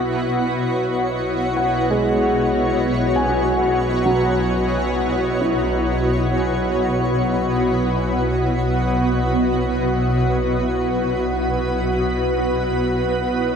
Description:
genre	ambient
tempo	free time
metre	none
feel	none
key	unclear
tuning	A4 = 440 Hz
part	shimmering ambient pad	sustained chords	0.0-13.6 s	B2 to C#5	-20 LUFS	equal	chorus, built-in reverb
part	clear symphonic double bass section	bass	0.0-13.6 s	B1	-26 LUFS	equal	none
part	pedal harmonium	drone	0.0-13.6 s	B3 to F#4	-25 LUFS	equal	none
part	twinkling granular texture	texture	0.3-13.6 s	C#5 to C#6	-33 LUFS	right 2 dB	built-in reverb
part	felt-muted upright piano	arpeggios	1.6-13.6 s	F#3 to G#5	-24 LUFS	equal	diffuse ambient delay
room	wet lush hall reverb, RT60 2.8 s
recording	none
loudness	-17 LUFS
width	side -7 dB against mid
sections	0.0-13.6 A section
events	fade-out on synth texture 0.0-13.6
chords	0.0 E69/B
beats	free time

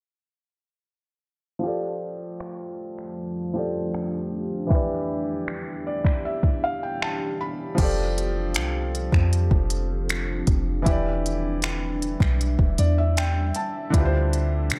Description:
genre	contemporary R&B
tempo	78 BPM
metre	4/4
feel	straight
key	unclear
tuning	A4 = 441 Hz
part	felt-muted upright piano	accompaniment	1.6-14.8 s	D3 to B5	-31 LUFS	equal	none
part	deep dark ambient pad	sustained chords	2.3-14.8 s	E2 to E5	-34 LUFS	equal	chorus, built-in reverb, sidechain pumping
part	smooth R&B drum kit	drums	2.4-14.8 s	crash cymbal, finger snaps, hi-hat, kick drum	-26 LUFS	equal	none
part	clean 808-style bass	bass	7.8-14.8 s	E1 to D3	-26 LUFS	equal	none
room	digital ambience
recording	dark, warm production, low-pass filter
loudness	-24 LUFS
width	mono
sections	1.6-7.8 A section; 7.8-14.8 B section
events	filter sweep 1.6-7.8; felt piano fill 5.5-7.8, 12.4-13.9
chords	1.6 F69; 4.7 Em7; 7.8 F69; 10.9 Em7; 13.9 Dm11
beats	| 1.63 2.40 3.17 3.94 | 4.71 5.47 6.24 7.01 | 7.78 8.55 9.32 10.09 | 10.86 11.63 12.40 13.17 | 13.94 14.71

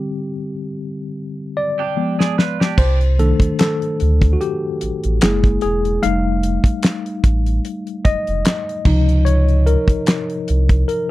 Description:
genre	R&B, neo-soul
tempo	74 BPM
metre	4/4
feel	swing 55% on 16ths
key	C dorian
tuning	A4 = 440 Hz
part	mellow tine electric piano	accompaniment	0.0-11.1 s	C3 to F5	-20 LUFS	left 2 dB	medium stereo tremolo
part	electric guitar through a small old amp	second line	1.8-3.0 s	D4 to Cb5	-24 LUFS	right 12 dB	wide subtle chorus
part	damped 70s drum kit	drums	2.2-11.1 s	crash cymbal, handclaps, hi-hat, kick drum, snare drum	-16 LUFS	equal	none
part	sub bass with octave	bass	2.8-10.8 s	E1 to D2	-16 LUFS	equal	none
room	little or no reverb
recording	dry, close 1970s-style studio recording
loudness	-15 LUFS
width	side -17 dB against mid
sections	0.0-2.8 A section; 2.8-11.1 B section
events	break 0.0-2.8; tine electric piano solo 0.0-2.8, 2.8-11.1; drum fill 2.0-2.8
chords	0.0 D7sus4; 2.0 Fdim7; 2.8 Cm69; 5.2 F#9; 6.0 F9; 8.9 Dbmaj7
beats	0.34 1.15 1.96 | 2.77 3.58 4.40 5.21 | 6.02 6.83 7.64 8.45 | 9.26 10.07 10.88

